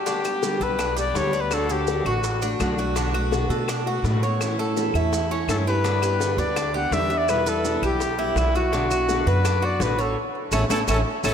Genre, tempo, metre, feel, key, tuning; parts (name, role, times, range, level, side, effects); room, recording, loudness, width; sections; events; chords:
latin, Cuban son and guajira; 166 BPM; 4/4; straight; A4 = 439 Hz
breathy trumpet; melody; 0.0-2.8, 5.5-11.3 s; E4 to F#5; -26 LUFS; left 3 dB; ping-pong delay
picked steel-string acoustic guitar; accompaniment; 0.1-11.3 s; B2 to G4; -28 LUFS; left 1 dB
Cuban tres; arpeggios; 0.1-11.3 s; C#4 to E5; -27 LUFS; right 3 dB; ping-pong delay
bongos; percussion; 0.1-11.3 s; -30 LUFS; left 5 dB
maracas; percussion; 0.1-11.3 s; -36 LUFS; right 7 dB
claves; percussion; 0.3-11.3 s; -38 LUFS; left 6 dB
upright bass; bass; 0.6-11.3 s; A1 to B2; -26 LUFS; equal
wet cathedral reverb, RT60 4.0 s; dreamy mix soaked in reverb; -20 LUFS; side -8 dB against mid
0.1-11.3 A section
drum fill 10.2-11.3; band accent 10.2-11.3
0.1 Gadd9; 1.5 D; 3.0 Bm7; 4.4 A; 5.8 G; 7.3 Em; 8.7 Bm; 10.2 Aadd9